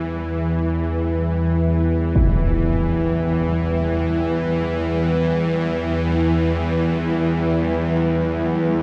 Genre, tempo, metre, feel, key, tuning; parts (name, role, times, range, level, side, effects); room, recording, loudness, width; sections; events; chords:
dark ambient drone; free time; A4 = 440 Hz
granular cloud pad; sustained chords; 0.1-8.8 s; G3 to G5; -32 LUFS; equal
bowed-like drone; drone; 0.0-8.8 s; E2 to E3; -21 LUFS; equal; built-in reverb
impact; percussion; 2.2-2.4 s; -26 LUFS; equal; low-pass filter on sfx
wet huge ambient reverb, RT60 8.0 s; dark, warm production; -20 LUFS; mono
0.0-8.8 A section
0.0 Em